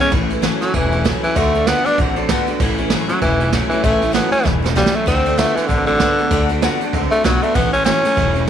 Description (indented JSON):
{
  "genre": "rockabilly",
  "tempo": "194 BPM",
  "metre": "4/4",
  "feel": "swing 59% on 8ths",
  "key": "A mixolydian",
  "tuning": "A4 = 440 Hz",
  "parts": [
    { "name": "raspy tenor saxophone", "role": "melody", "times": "0.0-8.5 s", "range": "D3 to D4", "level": "-18 LUFS", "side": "equal", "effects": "none" },
    { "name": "picked steel-string acoustic guitar", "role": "accompaniment", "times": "0.0-8.5 s", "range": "A2 to F#4", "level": "-22 LUFS", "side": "left 12 dB", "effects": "none" },
    { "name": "electric guitar through a small old amp", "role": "riff", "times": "0.0-8.5 s", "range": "E2 to C4", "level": "-24 LUFS", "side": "right 11 dB", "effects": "ensemble chorus" },
    { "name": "upright bass", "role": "bass", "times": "0.1-8.5 s", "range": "E1 to D2", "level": "-22 LUFS", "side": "equal", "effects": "none" },
    { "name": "jazz brush drum kit", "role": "drums", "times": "0.1-8.4 s", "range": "kick drum, ride cymbal, snare drum", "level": "-20 LUFS", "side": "right 3 dB", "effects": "none" }
  ],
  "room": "light reverb, small room reverb",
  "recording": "1960s-style stereo with parts hard left and right",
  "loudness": "-14 LUFS",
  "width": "side -9 dB against mid",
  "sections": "0.1-8.5 A section",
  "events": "tenor saxophone solo 0.1-8.5; drum fill 4.5-5.1",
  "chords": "0.1 A; 1.4 D; 2.6 A; 5.1 D; 7.6 A",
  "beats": "| 0.13 0.44 0.75 1.06 | 1.37 1.68 1.99 2.30 | 2.61 2.92 3.23 3.54 | 3.84 4.15 4.46 4.77 | 5.08 5.39 5.70 6.01 | 6.32 6.62 6.93 7.24 | 7.55 7.86 8.17 8.48"
}